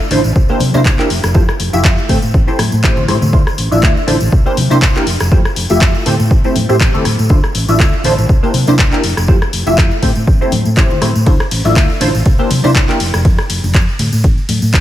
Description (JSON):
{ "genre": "filtered disco house", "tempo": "121 BPM", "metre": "4/4", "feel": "swing 55% on 16ths", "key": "D minor", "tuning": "A4 = 440 Hz", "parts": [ { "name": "funky polysynth comp", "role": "accompaniment", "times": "0.0-13.0 s", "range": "A3 to E5", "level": "-16 LUFS", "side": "equal", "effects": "chorus, phaser, sidechain pumping" }, { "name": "hollow-body short-scale fingered electric bass", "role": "bass", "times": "0.1-14.8 s", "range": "F1 to C3", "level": "-16 LUFS", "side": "equal", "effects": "tube saturation, sidechain pumping" }, { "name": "house drum kit", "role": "drums", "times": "0.1-14.8 s", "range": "handclaps, hi-hat, ride cymbal, rim click", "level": "-19 LUFS", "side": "left 1 dB", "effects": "sidechain pumping on hats, sidechain pumping on cymbals" }, { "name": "congas and tambourine", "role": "percussion", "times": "0.1-14.8 s", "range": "none", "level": "-23 LUFS", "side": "left 2 dB", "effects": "sidechain pumping on perc" }, { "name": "electronic kick drum", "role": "drums", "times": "0.4-14.8 s", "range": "none", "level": "-12 LUFS", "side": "equal", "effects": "none" } ], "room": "light reverb, digital ambience", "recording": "none", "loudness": "-10 LUFS", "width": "side -13 dB against mid", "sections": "0.0-14.8 A section", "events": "none", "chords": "0.4 C9; 1.1 Fmaj9; 2.1 Am7; 3.3 Dm9; 4.3 C9; 5.1 Fmaj9; 6.1 Am7; 7.3 Dm9; 8.3 C9; 9.0 Fmaj9; 10.0 Am7; 11.3 Dm9; 12.3 C9; 13.0 N.C." }